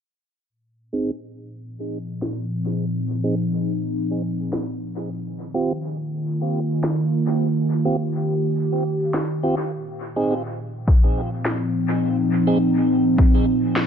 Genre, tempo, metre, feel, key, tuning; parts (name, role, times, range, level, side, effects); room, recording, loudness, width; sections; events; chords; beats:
ambient dub; 104 BPM; 4/4; straight; A4 = 435 Hz
warbly tape-like pad; sustained chords; 1.5-13.9 s; Bb2 to G4; -22 LUFS; equal; chorus, built-in reverb
tonewheel organ; stabs; 0.9-12.6 s; C4 to Ab4; -27 LUFS; right 2 dB; overdrive, slow rotary speaker, low-pass filter, dub echo
electronic snare drum; drums; 2.2-13.9 s; -28 LUFS; equal; dub echo
electronic kick drum; drums; 10.9-13.3 s; -16 LUFS; left 1 dB
light reverb; echo-heavy mix, low-pass filter; -20 LUFS; side -8 dB against mid
0.5-13.9 A section
filter sweep on ambient pad 0.5-13.9; filter sweep on tonewheel organ 0.5-13.9; filter sweep 0.5-13.9
0.5 Bb9sus4; 5.1 Eb69; 9.7 Bb9sus4
| 0.49 1.07 1.65 2.22 | 2.80 3.38 3.96 4.53 | 5.11 5.69 6.26 6.84 | 7.42 7.99 8.57 9.15 | 9.72 10.30 10.88 11.46 | 12.03 12.61 13.19 13.76